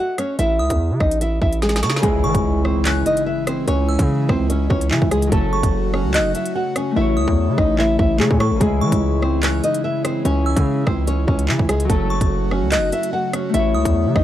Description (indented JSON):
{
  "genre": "hip hop, drill",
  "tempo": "146 BPM",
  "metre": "4/4",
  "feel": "half-time",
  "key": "C# minor",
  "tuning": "A4 = 440 Hz",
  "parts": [
    { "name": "nylon-string guitar", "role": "melody", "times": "0.0-14.2 s", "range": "E3 to F#5", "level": "-21 LUFS", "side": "equal", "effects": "none" },
    { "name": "delicate synth tine bell", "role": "second line", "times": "0.0-14.2 s", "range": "C#6 to F#6", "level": "-30 LUFS", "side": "right 2 dB", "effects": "chorus, phaser, analog delay" },
    { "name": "drill drum kit", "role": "drums", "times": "0.2-14.2 s", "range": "handclaps, hi-hat, kick drum, rim click, snare drum", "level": "-21 LUFS", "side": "equal", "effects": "none" },
    { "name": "distorted 808-style bass", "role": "bass", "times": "0.4-14.2 s", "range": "F#1 to E3", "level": "-20 LUFS", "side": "equal", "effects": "distortion" },
    { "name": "Celtic harp", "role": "accompaniment", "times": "2.0-14.2 s", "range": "C#3 to C#5", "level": "-25 LUFS", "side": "left 4 dB", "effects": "none" },
    { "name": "airy breathy pad", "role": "sustained chords", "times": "2.0-14.2 s", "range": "C#3 to F#4", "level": "-26 LUFS", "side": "equal", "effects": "chorus" },
    { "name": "impact", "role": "sound effects", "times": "2.0-3.7 s", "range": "none", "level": "-29 LUFS", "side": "equal", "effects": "none" }
  ],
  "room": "little or no reverb",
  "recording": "dry, gritty hardware recording",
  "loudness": "-16 LUFS",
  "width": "side -12 dB against mid",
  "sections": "0.0-2.0 A section; 2.0-14.2 B section",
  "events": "drum fill 1.6-2.0; impact 2.0-3.7; hi-hats muted 7.0-8.6",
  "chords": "0.4 A; 2.0 C#m; 5.3 F#m; 7.0 A; 8.6 C#m; 11.9 F#m; 13.5 A"
}